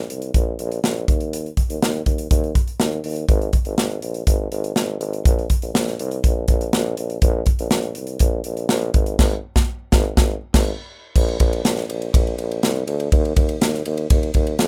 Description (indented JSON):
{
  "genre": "piano-driven pop",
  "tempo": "122 BPM",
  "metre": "4/4",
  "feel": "straight",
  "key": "unclear",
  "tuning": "A4 = 435 Hz",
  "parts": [
    { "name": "clear tuba", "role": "bass", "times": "0.0-14.7 s", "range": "Ab1 to F2", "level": "-26 LUFS", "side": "equal", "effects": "none" },
    { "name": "modern studio drum kit", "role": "drums", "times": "0.1-14.7 s", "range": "crash cymbal, hi-hat, kick drum, ride cymbal, snare drum", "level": "-21 LUFS", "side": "equal", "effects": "none" }
  ],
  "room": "little or no reverb",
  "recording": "rough home demo mix",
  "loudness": "-20 LUFS",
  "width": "mono",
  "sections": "0.0-11.2 A section; 11.2-14.7 B section",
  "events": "band accent 9.2-11.2",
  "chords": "none",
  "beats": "0.34 0.83 | 1.32 1.81 2.31 2.80 | 3.29 3.78 4.27 4.76 | 5.25 5.74 6.24 6.73 | 7.22 7.71 8.20 8.69 | 9.19 9.68 10.17 10.66 | 11.15 11.64 12.14 12.63 | 13.12 13.61 14.10 14.60"
}